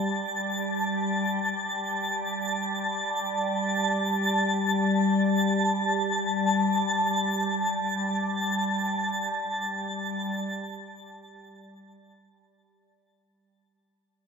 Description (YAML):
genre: ambient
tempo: free time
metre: none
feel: none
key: unclear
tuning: A4 = 440 Hz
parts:
  - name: organ-like drone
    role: drone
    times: 0.0-13.4 s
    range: G3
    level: -28 LUFS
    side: left 1 dB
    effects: ensemble chorus, built-in reverb, phaser
  - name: twinkling granular texture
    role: texture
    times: 0.0-13.3 s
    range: A5 to A6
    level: -27 LUFS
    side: equal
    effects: built-in reverb
room: wet huge ambient reverb, RT60 7.5 s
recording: in a vast, echoing space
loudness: -24 LUFS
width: side -6 dB against mid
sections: 0.0-13.3 A section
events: fade-in on synth drone 0.0-13.3; fade-in on synth texture 0.0-13.3; fade-out 6.1-13.3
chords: 0.0 Gsus2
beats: free time